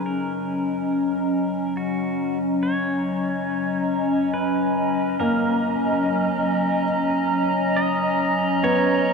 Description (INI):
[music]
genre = ambient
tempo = 70 BPM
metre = 3/4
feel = straight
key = B major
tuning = A4 = 440 Hz
[part]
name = pedal steel guitar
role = melody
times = 0.0-9.1 s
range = F#4 to D#5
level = -30 LUFS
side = right 2 dB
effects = tape echo
[part]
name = warbly tape-like pad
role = sustained chords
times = 0.0-9.1 s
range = F#3 to A#5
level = -21 LUFS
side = left 1 dB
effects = chorus, built-in reverb
[part]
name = felt-muted upright piano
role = arpeggios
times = 0.0-9.1 s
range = A#3 to B3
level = -28 LUFS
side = right 1 dB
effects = tape echo
[sound]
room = wet cathedral reverb, RT60 6.0 s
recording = in a vast, echoing space, cassette tape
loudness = -20 LUFS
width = side -5 dB against mid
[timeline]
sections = 0.0-9.1 A section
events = fade-in on pedal steel guitar 0.0-9.1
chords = 0.0 Bmaj7